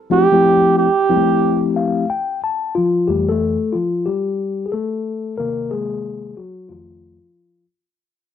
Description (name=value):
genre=hip hop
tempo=91 BPM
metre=4/4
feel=swing 64% on 16ths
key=F major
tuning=A4 = 439 Hz
part: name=breathy flugelhorn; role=melody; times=0.1-1.7 s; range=G4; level=-14 LUFS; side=right 6 dB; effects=cassette tape
part: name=mellow tine electric piano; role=accompaniment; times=0.1-7.7 s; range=F2 to A5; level=-18 LUFS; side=left 5 dB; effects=medium stereo tremolo, cassette tape
room=wet studio reverb, RT60 0.7 s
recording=home recording on cassette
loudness=-16 LUFS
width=side -9 dB against mid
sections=0.0-2.8 A section; 2.8-8.0 B section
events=tine electric piano fill 1.4-2.8; fade-out 2.8-8.0; tine electric piano solo 2.8-8.0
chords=0.0 Fmaj9; 5.4 Cm7b5; 6.7 F7